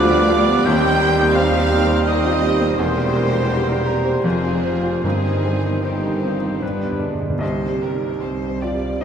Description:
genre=classical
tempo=73-86 BPM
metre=3/4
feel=rubato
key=C minor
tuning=A4 = 440 Hz
part: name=clear baby grand piano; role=melody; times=0.0-9.0 s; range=C2 to Eb5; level=-22 LUFS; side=equal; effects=none
part: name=rich chamber violin section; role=melody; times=0.0-9.0 s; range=G4 to G5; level=-31 LUFS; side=right 4 dB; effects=none
part: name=clear oboe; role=second line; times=0.0-7.1 s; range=B4 to C5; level=-31 LUFS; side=left 4 dB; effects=none
part: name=rich chamber violin section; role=second line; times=0.0-9.0 s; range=C4 to G5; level=-29 LUFS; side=left 2 dB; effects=none
part: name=silver concert flute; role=second line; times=0.0-6.6 s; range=G5 to G6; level=-25 LUFS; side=right 3 dB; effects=none
part: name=mellow bassoon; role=accompaniment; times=0.0-7.4 s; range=Eb3 to Ab3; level=-29 LUFS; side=right 5 dB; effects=none
part: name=rich chamber viola section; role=accompaniment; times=0.0-9.0 s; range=Bb3 to D5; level=-27 LUFS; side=right 2 dB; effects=none
part: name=bright trombone section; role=sustained chords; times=0.0-7.1 s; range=C3 to G3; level=-28 LUFS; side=right 1 dB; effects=none
part: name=mellow French horn section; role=sustained chords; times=0.0-9.0 s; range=G3 to C5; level=-27 LUFS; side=right 2 dB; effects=none
part: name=mellow tuba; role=bass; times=0.0-7.2 s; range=E1 to Eb2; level=-27 LUFS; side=equal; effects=none
part: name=warm chamber cello section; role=bass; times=0.0-9.0 s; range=D2 to C3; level=-29 LUFS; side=equal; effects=none
part: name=warm chamber double bass section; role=bass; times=0.0-9.0 s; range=E1 to Eb2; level=-26 LUFS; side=left 1 dB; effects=none
part: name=timpani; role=percussion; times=5.0-7.4 s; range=G2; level=-28 LUFS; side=right 1 dB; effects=none
room=wet cathedral reverb, RT60 5.9 s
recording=in a vast, echoing space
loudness=-16 LUFS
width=side -8 dB against mid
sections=0.0-7.4 A section; 7.4-9.0 B section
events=timpani fill 6.6-7.4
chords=0.0 G7/D; 0.7 Cm/Eb; 2.8 C7/E; 4.2 Fm; 5.0 Cm/G; 6.6 G; 7.4 Cm

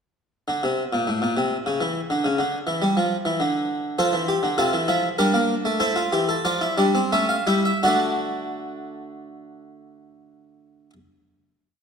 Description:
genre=classical, baroque-style 3-part fugue for harpsichord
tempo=81-104 BPM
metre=3/4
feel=straight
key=unclear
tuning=A4 = 439 Hz
part: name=harpsichord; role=solo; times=0.5-10.9 s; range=A2 to G5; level=-20 LUFS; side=equal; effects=none
room=wet scoring stage reverb, RT60 1.6 s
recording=none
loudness=-20 LUFS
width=side -6 dB against mid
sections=0.5-7.8 exposition; 7.8-11.8 final chord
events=slowing down 3.1-7.8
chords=0.5 N.C.; 4.0 F; 5.2 Gm; 5.8 Dm; 7.1 A7; 7.8 D

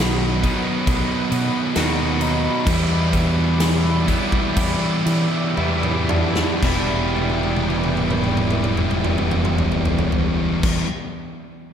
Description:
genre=post-rock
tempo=56-69 BPM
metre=4/4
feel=straight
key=E minor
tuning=A4 = 440 Hz
part: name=rich studio string section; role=sustained chords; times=0.0-10.8 s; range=E3 to B5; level=-29 LUFS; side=equal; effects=none
part: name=clean electric guitar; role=arpeggios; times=0.0-10.9 s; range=E2 to F#4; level=-27 LUFS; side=left 2 dB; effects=slapback echo
part: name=thick fuzz guitar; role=riff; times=0.0-10.9 s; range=B2 to E4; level=-22 LUFS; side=right 1 dB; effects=distortion, slapback echo
part: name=growling fingered electric bass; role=bass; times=0.0-10.8 s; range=E1 to E3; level=-24 LUFS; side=equal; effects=overdrive
part: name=big rock drum kit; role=drums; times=0.0-10.9 s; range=crash cymbal, kick drum, snare drum, toms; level=-23 LUFS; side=equal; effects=none
room=moderate lush hall reverb, RT60 2.8 s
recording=big arena sound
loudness=-17 LUFS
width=side -8 dB against mid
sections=0.0-6.6 A section; 6.6-10.9 B section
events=slowing down 0.0-6.6; drum fill 5.6-6.6, 7.2-10.6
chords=0.0 B; 2.7 Em7

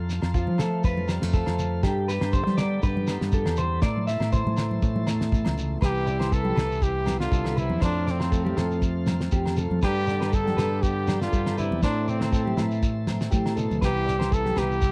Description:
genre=highlife guitar band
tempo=120 BPM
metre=4/4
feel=swing 54% on 16ths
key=C major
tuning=A4 = 439 Hz
part: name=picked plugged-in swing-style acoustic guitar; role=accompaniment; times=0.0-14.9 s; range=E2 to G4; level=-38 LUFS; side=equal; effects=none
part: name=tonewheel organ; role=sustained chords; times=0.0-14.9 s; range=E5 to C6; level=-47 LUFS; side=equal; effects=slow rotary speaker
part: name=electric guitar through a small old amp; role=arpeggios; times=0.0-14.8 s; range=E4 to E5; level=-35 LUFS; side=equal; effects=tape echo
part: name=fingered electric bass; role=bass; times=0.0-14.9 s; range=C2 to G3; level=-30 LUFS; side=equal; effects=none
part: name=damped 70s drum kit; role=drums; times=0.1-14.9 s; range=kick drum, snare drum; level=-28 LUFS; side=equal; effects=none
part: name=shekere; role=percussion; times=0.1-14.9 s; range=none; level=-38 LUFS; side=equal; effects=none
part: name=agogo bells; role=percussion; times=0.2-14.7 s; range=none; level=-44 LUFS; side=equal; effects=none
part: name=congas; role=percussion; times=0.5-14.7 s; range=none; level=-33 LUFS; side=equal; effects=none
part: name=warm trumpet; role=melody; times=5.8-14.9 s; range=C4 to A4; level=-30 LUFS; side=equal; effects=none
part: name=brilliant trombone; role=second line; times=5.8-14.9 s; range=A2 to E3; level=-39 LUFS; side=equal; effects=none
room=little or no reverb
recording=dry, close 1970s-style studio recording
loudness=-25 LUFS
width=mono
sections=0.0-5.8 A section; 5.8-14.9 B section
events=clean electric guitar solo 0.0-5.8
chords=0.0 F; 1.8 Gadd9; 3.8 Am; 5.8 Cmaj7; 7.8 F; 9.8 Gadd9; 11.8 Am; 13.8 Cmaj7

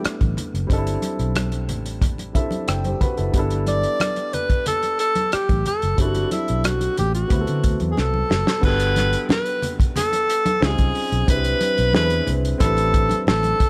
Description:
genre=lush 1970s-style soul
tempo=91 BPM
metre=4/4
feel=straight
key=G major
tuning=A4 = 439 Hz
part: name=clear alto saxophone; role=melody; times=0.0-13.7 s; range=E4 to D5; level=-24 LUFS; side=equal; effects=none
part: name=warm grand piano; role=accompaniment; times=0.0-13.7 s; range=F#3 to B5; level=-30 LUFS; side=equal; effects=none
part: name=warm soul drum kit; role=drums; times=0.0-13.7 s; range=crash cymbal, hi-hat, kick drum, rim click, snare drum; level=-24 LUFS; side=equal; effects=none
part: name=congas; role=percussion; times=0.0-13.6 s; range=none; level=-33 LUFS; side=equal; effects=none
part: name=vintage muted fingered electric bass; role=bass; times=0.1-13.5 s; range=F#1 to D3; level=-25 LUFS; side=equal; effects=none
room=studio reverb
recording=none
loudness=-21 LUFS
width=mono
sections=0.0-8.6 A section; 8.6-13.7 B section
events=grand piano fill 2.0-3.3; drum fill 8.0-8.6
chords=0.0 G69; 0.7 C69/G; 3.3 G69; 6.0 C69/G; 7.3 D13; 8.6 Gmaj9; 10.6 C#maj9; 11.3 Cmaj9; 11.9 E7b13; 12.6 Am11

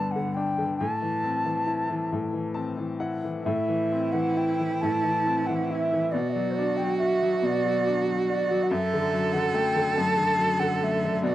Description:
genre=celtic folk, Celtic slow air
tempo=46 BPM (dotted quarters)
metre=6/8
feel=uneven beats, rubato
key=A dorian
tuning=A4 = 440 Hz
part: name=wooden flute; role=melody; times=0.0-11.3 s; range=C5 to A5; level=-28 LUFS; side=right 1 dB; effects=slapback echo
part: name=bright upright piano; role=accompaniment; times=0.0-11.3 s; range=F#2 to A5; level=-27 LUFS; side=left 3 dB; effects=none
part: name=rich cello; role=second line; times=3.4-11.3 s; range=E4 to A4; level=-28 LUFS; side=right 5 dB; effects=none
room=little or no reverb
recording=dry, close 1970s-style studio recording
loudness=-23 LUFS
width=side -14 dB against mid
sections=0.0-3.5 A section; 3.5-11.3 A section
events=upright piano fill 2.1-3.5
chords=0.0 G; 0.8 Am; 6.1 Bm; 8.7 D/F#

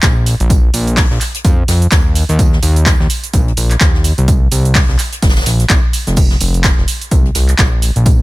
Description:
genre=piano house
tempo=127 BPM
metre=4/4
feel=swing 58% on 16ths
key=unclear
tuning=A4 = 441 Hz
part: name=fat analog bass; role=bass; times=0.0-8.2 s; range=F1 to F2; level=-13 LUFS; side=equal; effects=sidechain pumping
part: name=electronic kick drum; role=drums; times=0.0-8.2 s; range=none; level=-12 LUFS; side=equal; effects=none
part: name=jazz brush drum kit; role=drums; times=0.0-8.2 s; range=hi-hat, snare drum, tambourine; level=-26 LUFS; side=equal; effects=high-pass filter on hats, high-pass filter on snare, high-pass filter on perc, high-pass filter on room
part: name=punchy analog drum machine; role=drums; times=0.0-8.2 s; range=crash cymbal, handclaps, hi-hat, shaker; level=-18 LUFS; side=right 1 dB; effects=none
room=little or no reverb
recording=none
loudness=-10 LUFS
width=side -19 dB against mid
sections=0.0-8.2 A section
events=none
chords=none

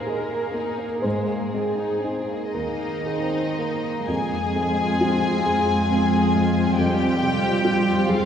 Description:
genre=cinematic, emotional film score for orchestra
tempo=37-47 BPM (dotted quarters)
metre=6/8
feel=rubato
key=Ab major, F minor from 4.1 s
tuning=A4 = 441 Hz
part: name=rich studio violin section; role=melody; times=0.0-8.3 s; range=Ab4 to Ab5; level=-29 LUFS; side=left 4 dB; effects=none
part: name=rich studio violin section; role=second line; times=0.0-8.3 s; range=Ab3 to Ab4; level=-28 LUFS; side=left 2 dB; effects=none
part: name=dark studio viola section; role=accompaniment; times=0.0-8.3 s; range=C4 to Bb4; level=-28 LUFS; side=right 1 dB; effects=none
part: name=felt-muted upright piano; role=accompaniment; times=0.0-8.3 s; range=Eb2 to F5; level=-27 LUFS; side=equal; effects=none
part: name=dark studio cello section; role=bass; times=0.0-8.3 s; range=Eb2 to Ab3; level=-25 LUFS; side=right 2 dB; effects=none
part: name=warm studio double bass section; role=bass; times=4.1-8.3 s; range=F2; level=-26 LUFS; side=left 1 dB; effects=none
room=wet concert hall reverb, RT60 2.3 s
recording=heard from further back in the room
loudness=-20 LUFS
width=side -8 dB against mid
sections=0.0-4.1 A section; 4.1-8.3 B section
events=none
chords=0.0 Ebsus4; 1.0 Abadd9; 4.1 Fm

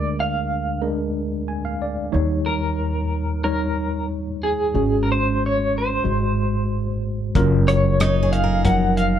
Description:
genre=acoustic folk-pop ballad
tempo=92 BPM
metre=4/4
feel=straight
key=unclear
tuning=A4 = 441 Hz
part: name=electric guitar through a small old amp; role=melody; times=0.0-9.2 s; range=Ab4 to Gb5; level=-23 LUFS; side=equal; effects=tremolo, plate reverb
part: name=tine electric piano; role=accompaniment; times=0.0-9.2 s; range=Gb1 to Ab5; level=-22 LUFS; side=equal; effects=overdrive, medium stereo tremolo
part: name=upright bass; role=bass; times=0.0-9.2 s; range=Gb1 to Eb2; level=-25 LUFS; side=equal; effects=none
part: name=cloth-damped thuddy drum kit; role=drums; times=7.4-9.1 s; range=hi-hat, kick drum, rim click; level=-22 LUFS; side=equal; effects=none
part: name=picked steel-string acoustic guitar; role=arpeggios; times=8.0-9.2 s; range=Eb4 to Bb4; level=-27 LUFS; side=right 3 dB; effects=none
room=light reverb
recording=dark, warm production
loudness=-19 LUFS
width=side -10 dB against mid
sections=0.0-7.4 A section; 7.4-9.2 B section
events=none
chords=0.0 Bb7/D; 2.1 Eb7; 4.7 Ab7sus4; 6.0 Ab7; 7.4 Gbmaj7

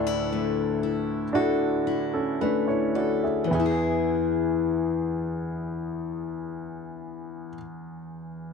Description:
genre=pop ballad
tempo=53-59 BPM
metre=4/4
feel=straight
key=E major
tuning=A4 = 439 Hz
part: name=warm concert grand piano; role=accompaniment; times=0.0-8.5 s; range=D2 to G#5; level=-27 LUFS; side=right 3 dB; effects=none
part: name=picked steel-string acoustic guitar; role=arpeggios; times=0.0-7.7 s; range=D3 to A4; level=-28 LUFS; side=left 16 dB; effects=none
room=little or no reverb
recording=dry, close 1970s-style studio recording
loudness=-24 LUFS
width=side -5 dB against mid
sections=0.0-3.5 A section; 3.5-8.0 B section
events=slowing down 0.0-3.5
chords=0.0 Dsus2; 3.5 E

